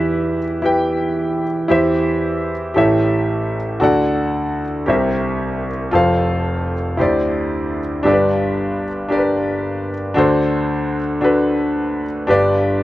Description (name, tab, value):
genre	gospel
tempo	57 BPM (dotted quarters)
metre	6/8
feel	straight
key	G major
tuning	A4 = 442 Hz
part	warm concert grand piano	solo	0.0-12.8 s	F1 to G5	-16 LUFS	equal	none
room	little or no reverb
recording	recorded outdoors, with no room sound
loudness	-16 LUFS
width	side -15 dB against mid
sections	0.0-12.8 A section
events	none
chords	0.0 Em; 1.7 C/E; 2.8 A7; 3.8 D; 4.9 C7; 5.9 F; 7.0 D9sus4; 8.0 G; 10.2 D7; 12.3 G